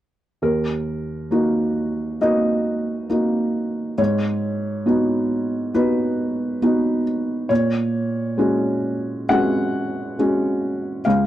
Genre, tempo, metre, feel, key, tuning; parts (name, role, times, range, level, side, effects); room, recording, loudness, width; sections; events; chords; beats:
classical; 68 BPM; 4/4; rubato; Eb minor; A4 = 440 Hz
felt-muted upright piano; accompaniment; 0.4-11.3 s; Db2 to Gb5; -19 LUFS; equal
moderate booth ambience, RT60 0.2 s; dry, close 1970s-style studio recording; -19 LUFS; side -13 dB against mid
0.4-11.3 A section
0.4 Ebm; 4.0 Abm7; 7.5 Gbadd9/Bb
| 0.42 1.31 2.21 3.10 | 3.98 4.87 5.75 6.62 | 7.50 8.38 9.29 10.18 | 11.05